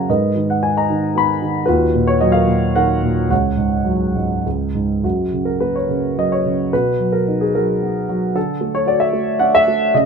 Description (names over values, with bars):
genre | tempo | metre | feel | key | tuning
classical, lyrical solo piano | 99-117 BPM | 3/4 | rubato | F# major | A4 = 437 Hz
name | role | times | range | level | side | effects
dark baby grand piano | solo | 0.0-10.1 s | C#2 to B5 | -15 LUFS | equal | none
room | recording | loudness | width
moderate small room ambience, RT60 0.5 s | minimal, uncompressed stereo recording | -15 LUFS | side -6 dB against mid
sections
0.0-5.0 A section; 5.0-10.1 A section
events
none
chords
0.1 G#madd9; 1.7 D#madd9; 3.3 C#sus4; 4.5 C#5; 5.0 F#; 6.7 B; 8.4 D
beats
| 0.08 0.62 1.15 | 1.67 2.20 2.75 | 3.31 3.87 4.46 | 5.05 5.61 6.17 | 6.73 7.28 7.83 | 8.36 8.87 9.40 | 9.95